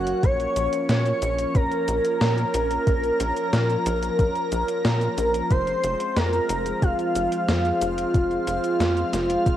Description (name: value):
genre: synthwave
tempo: 91 BPM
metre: 4/4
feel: straight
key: unclear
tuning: A4 = 440 Hz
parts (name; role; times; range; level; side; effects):
- expressive synth lead; melody; 0.0-9.6 s; F4 to Db5; -24 LUFS; equal; analog chorus, cassette tape, analog delay
- airy dreamy lead; second line; 0.0-9.6 s; F5 to Db6; -33 LUFS; left 1 dB; chorus, cassette tape, analog delay
- lush unison pad; sustained chords; 0.0-9.6 s; F3 to Db4; -29 LUFS; equal; chorus, sidechain pumping, cassette tape
- tight sequencer bass; bass; 0.0-9.6 s; F1 to Bb2; -26 LUFS; equal; none
- gated 80s digital drum machine; drums; 0.1-9.6 s; cabasa, hi-hat, snare drum; -29 LUFS; equal; gated reverb, gated reverb snare, overdrive, cassette tape
- electronic kick drum; drums; 0.2-9.6 s; none; -21 LUFS; equal; overdrive, cassette tape
room: light reverb, digital ambience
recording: home recording on cassette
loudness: -20 LUFS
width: side -11 dB against mid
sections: 0.0-9.6 A section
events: none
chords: 0.2 Bbm; 5.5 Fm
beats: | 0.23 0.89 1.55 2.21 | 2.87 3.53 4.19 4.85 | 5.51 6.17 6.83 7.49 | 8.14 8.80 9.46